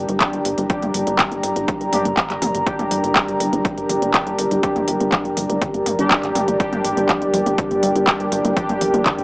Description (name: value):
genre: melodic techno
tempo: 122 BPM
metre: 4/4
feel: straight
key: G minor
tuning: A4 = 440 Hz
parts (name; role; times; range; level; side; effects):
- dark analog pad; sustained chords; 0.0-9.2 s; G4 to Bb5; -24 LUFS; equal; chorus, vintage 12-bit sampler grit, sidechain pumping
- analog synth brass; stabs; 0.0-9.2 s; G3 to G4; -22 LUFS; equal; chorus, sidechain pumping, tape echo
- plucky analog bass; bass; 0.0-9.2 s; G1 to A1; -26 LUFS; equal; sidechain pumping
- soft round pluck; arpeggios; 0.1-9.2 s; D3 to D4; -29 LUFS; equal; none
- techno drum kit; drums; 0.1-9.2 s; handclaps, hi-hat, toms; -21 LUFS; equal; none
- electronic kick drum; drums; 0.2-9.2 s; none; -23 LUFS; equal; none
room: little or no reverb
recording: dry, gritty hardware recording, small speaker sound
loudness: -16 LUFS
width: side -24 dB against mid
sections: 0.0-9.2 A section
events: none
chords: 0.0 Gm